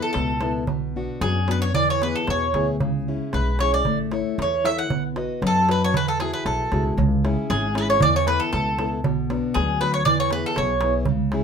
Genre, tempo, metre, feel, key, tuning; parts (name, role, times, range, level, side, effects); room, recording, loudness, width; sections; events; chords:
greek folk, Greek bouzouki band; 115 BPM; 2/4; straight; A4 = 440 Hz
Greek bouzouki; melody; 0.0-10.9 s; G#4 to F#5; -22 LUFS; right 1 dB
fingerpicked plugged-in steel-string acoustic guitar; accompaniment; 0.0-11.4 s; B2 to D#5; -26 LUFS; left 4 dB
darbuka; percussion; 0.1-11.4 s; -27 LUFS; right 7 dB
upright bass; bass; 0.2-11.4 s; G#1 to F#2; -26 LUFS; equal
moderate small room reverb, RT60 0.6 s; minimal, uncompressed stereo recording; -20 LUFS; side -6 dB against mid
0.0-7.0 A section; 7.0-11.4 A section
speeding up 0.0-11.4
0.0 Esus4; 0.7 Bm; 1.7 E; 2.8 C#m; 3.9 A; 4.9 B; 6.0 Eadd9; 7.0 C#m; 8.0 Esus4; 9.0 Bm; 10.1 E